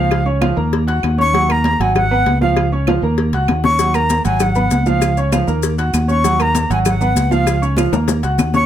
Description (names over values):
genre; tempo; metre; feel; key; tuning
latin, salsa; 196 BPM; 4/4; straight; Eb minor; A4 = 440 Hz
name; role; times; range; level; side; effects
silver concert flute; melody; 0.0-8.7 s; F5 to Db6; -18 LUFS; left 1 dB; none
clear upright piano; accompaniment; 0.0-8.7 s; F3 to Gb6; -19 LUFS; right 4 dB; none
fingered electric bass; bass; 0.0-8.7 s; Ab1 to Eb2; -18 LUFS; equal; none
claves; percussion; 0.1-8.5 s; none; -29 LUFS; right 7 dB; none
congas; percussion; 0.1-8.7 s; none; -22 LUFS; left 1 dB; none
cowbell and bongos; percussion; 0.1-8.6 s; none; -23 LUFS; left 6 dB; none
maracas; percussion; 3.8-8.7 s; none; -30 LUFS; left 10 dB; none
room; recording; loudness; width
light reverb; close, detailed microphones; -13 LUFS; side -10 dB against mid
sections
0.0-8.7 A section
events
drum fill 2.9-3.8, 7.9-8.7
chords
0.1 Db; 0.7 Ebm; 2.0 Abm7; 2.6 Db; 3.2 Ebm; 4.4 Abm7; 5.0 Db; 5.6 Ebm; 6.9 Abm7; 7.5 Db; 8.1 Ebm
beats
| 0.12 0.42 0.73 1.03 | 1.34 1.65 1.95 2.26 | 2.56 2.87 3.18 3.48 | 3.79 4.10 4.40 4.71 | 5.01 5.32 5.63 5.93 | 6.24 6.55 6.85 7.16 | 7.46 7.77 8.08 8.38